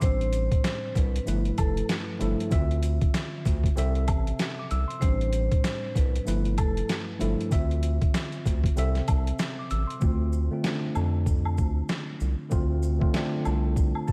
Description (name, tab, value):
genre	hip hop, boom-bap hip-hop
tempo	96 BPM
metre	4/4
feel	swing 59% on 16ths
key	D dorian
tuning	A4 = 442 Hz
part	vibraphone with medium hard mallets	melody	0.0-6.9 s	A4 to C5	-37 LUFS	equal	high-pass filter, low-pass filter, analog delay
part	tine electric piano	accompaniment	0.0-14.1 s	G2 to E6	-33 LUFS	equal	high-pass filter, low-pass filter
part	round analog bass	bass	0.0-14.1 s	F1 to F2	-29 LUFS	equal	none
part	boom bap sampler-style drum kit	drums	0.0-14.1 s	hi-hat, kick drum, snare drum	-29 LUFS	equal	none
part	maracas and woodblock	percussion	0.0-14.1 s	none	-42 LUFS	equal	none
room	light reverb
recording	vinyl crackle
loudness	-26 LUFS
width	mono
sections	0.0-10.0 A section; 10.0-14.1 B section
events	hi-hats muted 10.0-14.1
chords	0.0 Am7; 1.3 G13; 2.5 Dm9; 3.8 C6; 5.0 Am7; 6.3 G13; 7.5 Dm9; 8.8 C6; 10.0 Dm7